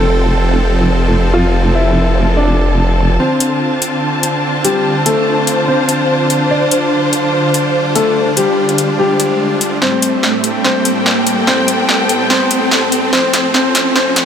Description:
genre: heavy wobble dubstep.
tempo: 145 BPM.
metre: 4/4.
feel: swing 55% on 16ths, half-time.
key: D minor.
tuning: A4 = 439 Hz.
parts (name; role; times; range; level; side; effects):
clear grand piano; melody; 0.0-14.2 s; G3 to D5; -16 LUFS; left 2 dB; low-pass filter, tape echo.
supersaw chords; sustained chords; 0.0-14.2 s; A2 to A4; -18 LUFS; equal; none.
formant-sweep wobble bass; bass; 0.0-3.2 s; F1; -13 LUFS; equal; chorus, overdrive.
dark symphonic string section; texture; 0.0-14.2 s; C4 to A5; -18 LUFS; equal; none.
riser; sound effects; 5.8-14.2 s; none; -21 LUFS; right 2 dB; none.
big-room dance drum kit; drums; 3.4-14.2 s; hi-hat, snare drum; -15 LUFS; left 1 dB; high-pass filter on hats, low-pass filter on hats, small room reverb, high-pass filter on snare, low-pass filter on snare.
room: light reverb.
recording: high-pass filter.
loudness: -11 LUFS.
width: side -8 dB against mid.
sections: 0.0-3.2 A section; 3.2-14.2 B section.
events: build-up 3.2-14.2; filter sweep on grand piano 3.2-14.2; riser 5.8-14.2; drum fill 9.8-14.2.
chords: 0.0 F; 3.2 Dm7; 9.8 Am7; 13.1 F.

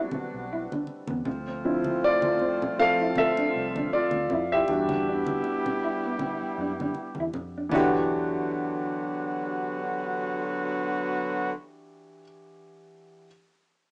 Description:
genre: R&B, neo-soul.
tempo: 79 BPM.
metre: 4/4.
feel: swing 56% on 16ths.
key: unclear.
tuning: A4 = 440 Hz.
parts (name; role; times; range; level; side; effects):
mellow electric guitar; second line; 0.0-8.0 s; B3 to E4; -31 LUFS; equal; wide subtle chorus.
warm grand piano; accompaniment; 0.0-13.3 s; E3 to F5; -26 LUFS; equal; none.
mellow horn section; stabs; 0.0-11.5 s; D3 to G4; -30 LUFS; equal; none.
vintage muted fingered electric bass; bass; 0.1-12.2 s; E1 to F#2; -40 LUFS; equal; none.
congas; percussion; 0.1-8.1 s; none; -34 LUFS; equal; none.
room: wet studio ambience, RT60 0.5 s.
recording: rough home demo mix, small speaker sound.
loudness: -24 LUFS.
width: side -31 dB against mid.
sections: 0.0-7.7 A section; 7.7-10.8 B section.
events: grand piano solo 0.0-7.7.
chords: 0.0 Em9; 1.3 Dm9; 4.7 Em9.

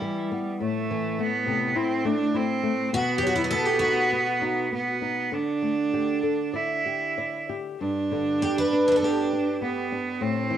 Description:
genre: fado-style ballad.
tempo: 101 BPM.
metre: 4/4.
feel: rubato.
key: unclear.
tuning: A4 = 440 Hz.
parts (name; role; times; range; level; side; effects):
picked twelve-string acoustic guitar; melody; 0.0-9.9 s; E4 to B4; -26 LUFS; equal; cassette tape.
bright cello; second line; 0.0-10.6 s; G3 to E4; -25 LUFS; right 4 dB; cassette tape.
flamenco guitar; accompaniment; 0.0-10.6 s; G2 to D5; -30 LUFS; left 6 dB; cassette tape.
room: wet spring reverb, RT60 1.2 s, studio ambience.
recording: home recording on cassette.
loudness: -23 LUFS.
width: side -10 dB against mid.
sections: 0.0-10.6 A section.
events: none.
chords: 0.0 Em; 0.6 Am; 2.9 B; 5.3 Dsus4; 7.8 G.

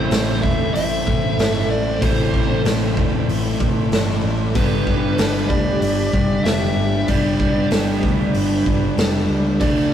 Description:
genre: rock, shoegaze and dream pop.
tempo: 95 BPM.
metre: 4/4.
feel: straight.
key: unclear.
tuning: A4 = 444 Hz.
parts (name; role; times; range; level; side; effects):
dark smooth lead guitar; melody; 0.0-9.9 s; B4 to E5; -24 LUFS; equal; overdrive.
phased analog pad; sustained chords; 0.0-9.9 s; F4 to B5; -28 LUFS; equal; phaser, chorus.
crunchy overdriven guitar; riff; 0.0-9.9 s; G2 to E4; -24 LUFS; right 6 dB; none.
thick fuzz guitar; riff; 0.0-9.9 s; G2 to D4; -23 LUFS; left 6 dB; distortion.
vintage muted fingered electric bass; bass; 0.0-9.9 s; E1 to D2; -24 LUFS; equal; none.
raw garage drum kit; drums; 0.1-9.8 s; hi-hat, kick drum, snare drum; -21 LUFS; equal; none.
tambourine; percussion; 9.8 s; none; -41 LUFS; left 4 dB; none.
room: wet studio ambience, RT60 0.5 s.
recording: rough rehearsal-room recording, warm saturation.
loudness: -16 LUFS.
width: side -9 dB against mid.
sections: 0.0-9.9 A section.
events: none.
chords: 0.0 Amadd9; 4.6 G.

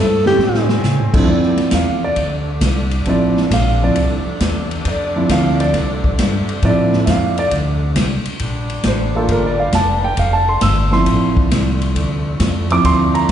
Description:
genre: jazz, big band swing.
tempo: 135 BPM.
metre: 4/4.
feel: swing 68% on 8ths.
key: D minor.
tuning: A4 = 440 Hz.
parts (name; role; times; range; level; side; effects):
breathy tenor saxophone; melody; 0.0-0.7 s; G4 to A4; -16 LUFS; equal; none.
bright saxophone section; sustained chords; 0.0-13.3 s; C3 to D4; -27 LUFS; equal; none.
upright bass; bass; 0.0-13.3 s; F1 to C#3; -18 LUFS; equal; none.
warm grand piano; accompaniment; 0.3-13.3 s; F3 to E6; -17 LUFS; right 1 dB; none.
swinging big-band drum kit; drums; 0.3-13.3 s; crash cymbal, hi-hat, kick drum, ride cymbal, snare drum; -21 LUFS; equal; none.
room: wet scoring stage reverb, RT60 1.7 s.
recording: heard from further back in the room, nothing above 10.6 kHz.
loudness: -14 LUFS.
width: side -9 dB against mid.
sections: 0.0-1.3 A section; 1.3-13.3 A section.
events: tenor saxophone solo 0.0-1.3; drum fill 0.4-0.8; grand piano solo 1.3-13.3.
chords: 0.4 A7#9; 1.3 Dm7; 8.4 Gm7; 10.2 Dm7.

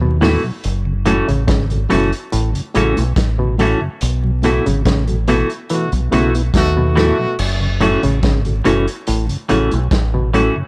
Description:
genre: roots reggae.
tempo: 71 BPM.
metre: 4/4.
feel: straight.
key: F# dorian.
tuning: A4 = 440 Hz.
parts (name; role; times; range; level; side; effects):
mellow tonewheel organ; accompaniment; 0.0-10.6 s; F#2 to E4; -25 LUFS; equal; slow rotary speaker.
muted clav; arpeggios; 0.0-10.5 s; A2 to E3; -25 LUFS; equal; phaser.
deep dub fingered electric bass; bass; 0.0-10.5 s; F#1 to D#2; -20 LUFS; equal; none.
semi-hollow electric guitar; accompaniment; 0.2-10.5 s; E3 to F#4; -24 LUFS; equal; none.
mellow reed electric piano; stabs; 0.2-10.5 s; B3 to A4; -22 LUFS; equal; fast tremolo.
vintage drum kit; drums; 0.2-10.5 s; crash cymbal, hi-hat, kick drum, snare drum; -23 LUFS; equal; none.
clear horn section; second line; 5.7-7.3 s; B2 to F#4; -23 LUFS; equal; none.
room: small room ambience.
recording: vinyl crackle.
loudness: -16 LUFS.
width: mono.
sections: 0.0-7.4 A section; 7.4-10.7 A section.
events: band accent 4.0-7.4.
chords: 0.0 B7sus4; 0.6 F#m7; 4.0 B7sus4; 7.4 F#m7.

